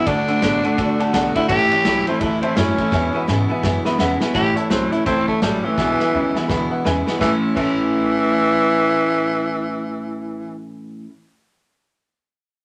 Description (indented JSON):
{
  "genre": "rockabilly",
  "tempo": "168 BPM",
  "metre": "4/4",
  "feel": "swing 61% on 8ths",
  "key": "A major",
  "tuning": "A4 = 440 Hz",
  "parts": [
    { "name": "growling tenor saxophone", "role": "melody", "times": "0.0-10.6 s", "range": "E3 to G4", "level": "-22 LUFS", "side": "equal", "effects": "none" },
    { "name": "picked steel-string acoustic guitar", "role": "accompaniment", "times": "0.0-11.1 s", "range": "E2 to F#4", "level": "-29 LUFS", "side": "equal", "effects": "none" },
    { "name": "electric guitar through a small old amp", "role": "riff", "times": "0.0-11.1 s", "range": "E2 to E4", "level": "-25 LUFS", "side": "equal", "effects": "none" },
    { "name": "dark upright piano", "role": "accompaniment", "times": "0.1-10.6 s", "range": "B4 to B5", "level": "-28 LUFS", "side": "equal", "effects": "none" },
    { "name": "upright bass", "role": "bass", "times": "0.1-10.6 s", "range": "A1 to G#2", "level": "-30 LUFS", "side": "equal", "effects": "none" },
    { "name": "vintage drum kit", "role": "drums", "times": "0.1-7.7 s", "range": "crash cymbal, hi-hat, kick drum, ride cymbal, snare drum", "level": "-28 LUFS", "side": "equal", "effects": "none" }
  ],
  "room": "moderate studio reverb, RT60 0.7 s",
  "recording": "none",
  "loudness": "-19 LUFS",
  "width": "mono",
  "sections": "0.0-4.4 A section; 4.4-7.2 B section; 7.2-10.1 C section",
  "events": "drum fill 2.9-4.4, 5.8-7.2; upright piano fill 6.5-7.2",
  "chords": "0.1 D; 1.5 A; 2.9 E; 4.4 A; 5.8 E; 7.2 A"
}